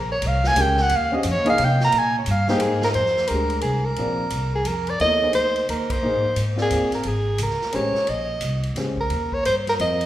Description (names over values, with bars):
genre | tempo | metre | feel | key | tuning
modal jazz | 176 BPM | 3/4 | swing 64% on 8ths | unclear | A4 = 440 Hz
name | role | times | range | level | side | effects
mellow soprano saxophone | melody | 0.0-10.1 s | G4 to Bb5 | -21 LUFS | right 1 dB | none
upright bass | bass | 0.0-10.1 s | Ab1 to C3 | -25 LUFS | equal | none
swinging big-band drum kit | drums | 0.2-10.1 s | hi-hat, kick drum, ride cymbal, snare drum | -32 LUFS | right 1 dB | none
warm baby grand piano | accompaniment | 0.6-10.0 s | Ab3 to Eb5 | -26 LUFS | left 2 dB | none
room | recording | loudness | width
wet recital hall reverb, RT60 1.6 s | recorded in a church or concert hall | -19 LUFS | side -13 dB against mid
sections
0.0-3.0 A section; 3.0-10.1 B section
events
soprano saxophone solo 0.0-3.0; band accent 5.9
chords
0.0 Eb9sus4; 3.0 Bb9sus4; 7.0 Eb9sus4